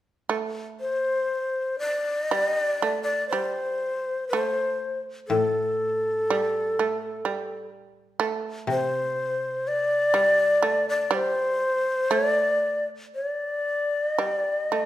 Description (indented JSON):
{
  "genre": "japanese traditional, Japanese chamber music",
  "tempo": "61 BPM",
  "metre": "4/4",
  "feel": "uneven beats, rubato",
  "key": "unclear",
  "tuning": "A4 = 440 Hz",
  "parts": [
    { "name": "shamisen", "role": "second line", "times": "0.3-14.9 s", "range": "G3 to A3", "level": "-28 LUFS", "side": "right 6 dB", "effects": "none" },
    { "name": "breathy mellow shakuhachi", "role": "melody", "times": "0.8-14.9 s", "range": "A4 to D5", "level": "-24 LUFS", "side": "left 1 dB", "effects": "none" },
    { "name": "koto", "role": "accompaniment", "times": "5.3-11.6 s", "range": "A2 to C3", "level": "-29 LUFS", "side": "left 3 dB", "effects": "none" }
  ],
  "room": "moderate recital hall reverb, RT60 1.3 s",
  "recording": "none",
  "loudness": "-23 LUFS",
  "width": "side -13 dB against mid",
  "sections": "0.3-14.9 A section",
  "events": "none",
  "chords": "none"
}